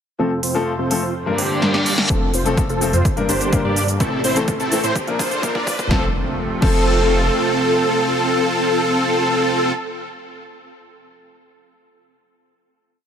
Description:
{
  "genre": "EDM, festival progressive house",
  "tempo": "126 BPM",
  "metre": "4/4",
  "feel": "straight",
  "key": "F major",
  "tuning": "A4 = 440 Hz",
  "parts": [
    { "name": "warm grand piano", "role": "accompaniment", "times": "0.2-9.7 s", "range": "G2 to Bb4", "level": "-24 LUFS", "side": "left 3 dB", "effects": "sidechain pumping, tape echo" },
    { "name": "lush unison pad", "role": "sustained chords", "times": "0.2-9.0 s", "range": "F2 to D5", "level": "-28 LUFS", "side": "right 1 dB", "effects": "chorus, sidechain pumping" },
    { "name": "dense compressed supersaw", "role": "riff", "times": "0.2-9.7 s", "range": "C4 to D5", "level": "-21 LUFS", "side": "right 1 dB", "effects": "sidechain pumping, low-pass filter, tape echo" },
    { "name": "big-room dance drum kit", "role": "drums", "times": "0.4-6.8 s", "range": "crash cymbal, hi-hat, shaker, snare drum", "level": "-25 LUFS", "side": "right 1 dB", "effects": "overdrive" },
    { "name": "reverse cymbal, riser and impact", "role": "sound effects", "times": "1.3-9.0 s", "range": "none", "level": "-27 LUFS", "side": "equal", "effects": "none" },
    { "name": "wide unison lead", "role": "arpeggios", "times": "2.1-9.7 s", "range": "A4 to D5", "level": "-22 LUFS", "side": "equal", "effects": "ensemble chorus, cassette tape, sidechain pumping, tape echo" },
    { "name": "detuned saw bass", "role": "bass", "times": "2.1-7.3 s", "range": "F1 to A2", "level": "-24 LUFS", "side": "equal", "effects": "sidechain pumping" },
    { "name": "electronic kick drum", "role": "drums", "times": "2.1-6.8 s", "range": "none", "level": "-21 LUFS", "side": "equal", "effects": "overdrive" }
  ],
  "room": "light reverb",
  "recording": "high-pass filter",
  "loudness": "-16 LUFS",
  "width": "side -8 dB against mid",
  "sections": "0.2-2.1 intro; 2.1-5.9 build; 5.9-9.7 final chord",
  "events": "filter sweep on analog synth pad 0.2-2.1; reverse cymbal 1.3-2.1; drum fill 1.6-2.1, 4.0-5.9; build-up 2.1-5.9; riser 2.1-5.9; filter sweep on supersaw synth 2.1-5.9; filter sweep on analog synth lead 2.1-5.9; filter sweep 2.1-5.9",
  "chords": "0.2 F; 1.1 Gm; 2.1 F; 3.1 Gm; 4.0 Am; 5.0 Bb; 5.9 F",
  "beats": "| 0.19 0.67 1.15 1.62 | 2.10 2.58 3.05 3.53 | 4.00 4.48 4.96 5.43 | 5.91 6.38 6.86 7.34 | 7.81 8.29 8.77 9.24"
}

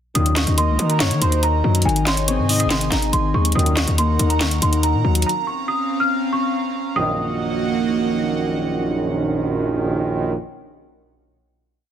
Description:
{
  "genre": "hip hop, trap",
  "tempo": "141 BPM",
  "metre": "4/4",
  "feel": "half-time",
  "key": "Eb dorian",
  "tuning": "A4 = 437 Hz",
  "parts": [
    { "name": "worn celesta", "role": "melody", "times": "0.1-8.2 s", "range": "Ab5 to F6", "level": "-23 LUFS", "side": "right 2 dB", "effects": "low-pass filter, tape echo" },
    { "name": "dark concert grand piano", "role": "accompaniment", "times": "0.2-5.3 s", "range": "Eb3 to Eb4", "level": "-23 LUFS", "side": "left 6 dB", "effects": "low-pass filter" },
    { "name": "airy breathy pad", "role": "sustained chords", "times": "0.5-10.3 s", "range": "C3 to Bb5", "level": "-26 LUFS", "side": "right 2 dB", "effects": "chorus" },
    { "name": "dark brass ensemble", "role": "stabs", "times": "0.2-0.6, 3.6-4.0, 7.0-10.3 s", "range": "Bb1 to Eb3", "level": "-22 LUFS", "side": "right 3 dB", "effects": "none" },
    { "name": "hard-hitting 808-style bass", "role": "bass", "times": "0.2-5.2 s", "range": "Ab1 to Eb3", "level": "-19 LUFS", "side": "equal", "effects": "none" },
    { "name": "trap drum kit", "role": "drums", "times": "0.2-5.4 s", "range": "handclaps, hi-hat, snare drum", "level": "-22 LUFS", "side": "equal", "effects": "none" },
    { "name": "warm velvety synth lead", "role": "second line", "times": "0.6-3.1 s", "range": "C5 to Eb5", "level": "-29 LUFS", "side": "equal", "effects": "chorus, tape echo" }
  ],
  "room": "light reverb, small room ambience",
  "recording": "dense, heavily limited modern master, faint mains hum",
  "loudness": "-17 LUFS",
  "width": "side -9 dB against mid",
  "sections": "0.2-7.0 hook; 7.0-10.4 final chord",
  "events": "none",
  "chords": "0.2 Ebm; 1.9 Ab; 3.6 Ebm; 5.3 Bbmadd9; 7.0 Ebm",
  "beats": "| 0.15 0.58 1.00 1.43 | 1.85 2.28 2.71 3.13 | 3.56 3.98 4.41 4.83 | 5.26 5.68 6.11 6.54 | 6.96 7.39 7.81 8.24 | 8.66 9.09 9.51 9.94"
}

